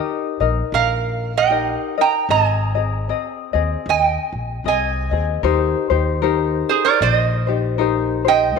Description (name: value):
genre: Hawaiian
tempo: 76 BPM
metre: 4/4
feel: swing 59% on 8ths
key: Ab major, Eb major from 5.4 s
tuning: A4 = 439 Hz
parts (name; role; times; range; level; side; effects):
- metal-body resonator slide guitar; melody; 0.0-8.6 s; Ab4 to Bb5; -18 LUFS; right 8 dB; none
- tenor ukulele; accompaniment; 0.0-8.6 s; C4 to Eb5; -21 LUFS; left 10 dB; none
- upright bass; bass; 0.4-8.6 s; Ab1 to Eb2; -22 LUFS; left 1 dB; none
room: wet echo chamber reverb, RT60 1.9 s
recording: 1960s-style stereo with parts hard left and right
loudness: -16 LUFS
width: side -5 dB against mid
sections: 0.0-5.4 A section; 5.4-8.6 B section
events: none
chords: 0.0 Eb; 2.3 Abmaj7; 5.4 Eb6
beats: 0.71 1.50 | 2.29 3.07 3.86 4.64 | 5.43 6.21 7.00 7.78 | 8.56